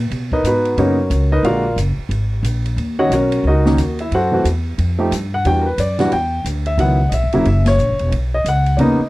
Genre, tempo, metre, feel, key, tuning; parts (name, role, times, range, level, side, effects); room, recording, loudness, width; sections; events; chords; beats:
jazz piano trio; 180 BPM; 4/4; swing 62% on 8ths; B major; A4 = 440 Hz
upright bass; bass; 0.0-9.0 s; E1 to B2; -18 LUFS; equal
open jazz drum kit; drums; 0.1-8.9 s; hi-hat, kick drum, ride cymbal, snare drum; -30 LUFS; right 1 dB
warm concert grand piano; melody; 0.3-9.1 s; C#3 to G5; -16 LUFS; equal
light reverb; dry, close 1970s-style studio recording; -14 LUFS; side -18 dB against mid
0.1-9.1 A section
band accent 7.6
0.1 Bmaj9; 1.4 A#7b13; 2.8 D#m7; 4.1 F#m7b5; 4.8 Fsus2; 5.5 Em9; 6.8 C#m11; 7.5 F#7; 8.1 Badd9
| 0.11 0.44 0.78 1.11 | 1.45 1.78 2.11 2.45 | 2.78 3.12 3.45 3.78 | 4.12 4.45 4.79 5.12 | 5.45 5.79 6.12 6.45 | 6.79 7.12 7.45 7.79 | 8.12 8.46 8.79